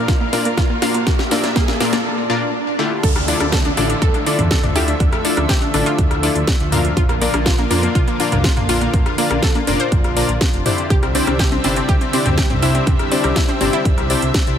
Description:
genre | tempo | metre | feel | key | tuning
progressive house | 122 BPM | 4/4 | straight | D minor | A4 = 440 Hz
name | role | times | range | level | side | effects
lush unison pad | sustained chords | 0.0-14.6 s | D3 to F5 | -25 LUFS | equal | chorus, sidechain pumping
analog pluck | arpeggios | 0.0-14.6 s | Bb3 to C5 | -24 LUFS | equal | chorus, sidechain pumping, ping-pong delay
supersaw stab | stabs | 0.0-14.2 s | Bb2 to F5 | -21 LUFS | left 3 dB | sidechain pumping, ping-pong delay
riser, swell and downlifter | sound effects | 0.0-7.0 s | none | -26 LUFS | right 2 dB | none
electronic kick drum | drums | 0.1-14.4 s | none | -17 LUFS | equal | none
house drum kit | drums | 0.1-14.6 s | crash cymbal, hi-hat, snare drum | -24 LUFS | right 1 dB | none
dark detuned saw bass | bass | 3.0-14.6 s | F1 to F2 | -22 LUFS | right 1 dB | sidechain pumping
punchy analog drum machine | percussion | 3.0-14.1 s | congas, rim click, toms | -25 LUFS | left 1 dB | sidechain pumping on toms, sidechain pumping on snare, sidechain pumping on perc
room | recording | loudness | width
light reverb, digital ambience | none | -14 LUFS | side -9 dB against mid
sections
0.0-3.0 A section; 3.0-14.6 B section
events
build-up 0.0-3.0; drum fill 0.0-2.1; riser 0.0-2.1; filter sweep on synth arpeggio sound 0.0-3.0; break 2.1-3.0; swell 2.1-3.0; drop 3.0-14.6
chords
0.0 Bb; 3.0 Dmadd9; 7.0 Bb; 10.9 Cadd9

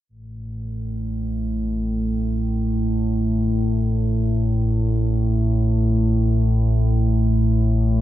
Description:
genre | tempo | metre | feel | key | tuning
ambient | free time | none | none | unclear | A4 = 443 Hz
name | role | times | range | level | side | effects
analog drone | solo | 0.3-8.0 s | A1 to A2 | -18 LUFS | equal | chorus
room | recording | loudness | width
moderate huge ambient reverb, RT60 8.1 s | cassette tape | -18 LUFS | side -14 dB against mid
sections
0.1-8.0 A section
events
none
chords
none

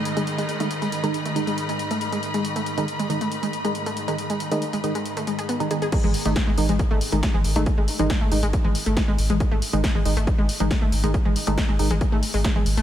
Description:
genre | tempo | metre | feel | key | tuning
driving peak-time techno | 138 BPM | 4/4 | straight | G# phrygian | A4 = 435 Hz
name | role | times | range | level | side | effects
analog pluck | riff | 0.0-12.8 s | G#3 to G#4 | -27 LUFS | left 1 dB | chorus, sidechain pumping, diffuse ambient delay
overtone-sweeping drone | drone | 0.0-6.0 s | G#2 to D#3 | -32 LUFS | right 1 dB | chorus, built-in reverb, phaser, sidechain pumping
clear symphonic string section | texture | 0.0-5.9 s | G#3 to B5 | -31 LUFS | left 2 dB | sidechain pumping
techno drum kit | drums | 0.1-12.8 s | crash cymbal, hi-hat, snare drum, toms | -30 LUFS | left 2 dB | overdrive, studio reverb
wavetable chord stab | stabs | 0.2-11.9 s | D#3 to D#4 | -28 LUFS | right 2 dB | sidechain pumping, diffuse ambient delay
electronic kick drum | drums | 5.9-12.5 s | none | -22 LUFS | equal | overdrive, studio reverb
saturated sub bass | bass | 6.0-12.8 s | G#1 | -24 LUFS | equal | tube saturation, sidechain pumping, low-pass filter
room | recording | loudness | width
moderate huge ambient reverb, RT60 7.0 s | dreamy mix soaked in reverb | -20 LUFS | side -11 dB against mid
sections
0.0-5.9 A section; 5.9-12.8 B section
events
filter sweep on synth arpeggio sound 0.0-5.9; drop 5.9-12.8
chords
0.0 G#5

